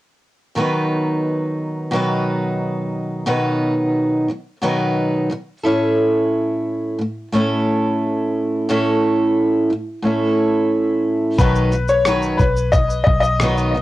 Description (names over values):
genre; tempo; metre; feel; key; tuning
acoustic pop; 89 BPM; 4/4; straight; B mixolydian; A4 = 440 Hz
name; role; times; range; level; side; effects
picked steel-string acoustic guitar; accompaniment; 0.6-13.8 s; A2 to B4; -17 LUFS; right 1 dB; cassette tape
bright upright piano; melody; 11.4-13.8 s; B4 to D#5; -18 LUFS; left 3 dB; cassette tape, tape echo
vintage muted fingered electric bass; bass; 11.4-13.8 s; B1; -21 LUFS; equal; tube saturation
dusty soul sampler-style drum kit; drums; 11.4-13.7 s; kick drum, rim click, shaker; -18 LUFS; equal; cassette tape
room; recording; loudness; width
light reverb; home recording on cassette; -16 LUFS; side -16 dB against mid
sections
0.6-11.4 A section; 11.4-13.8 B section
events
none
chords
0.6 B; 5.6 A; 11.4 B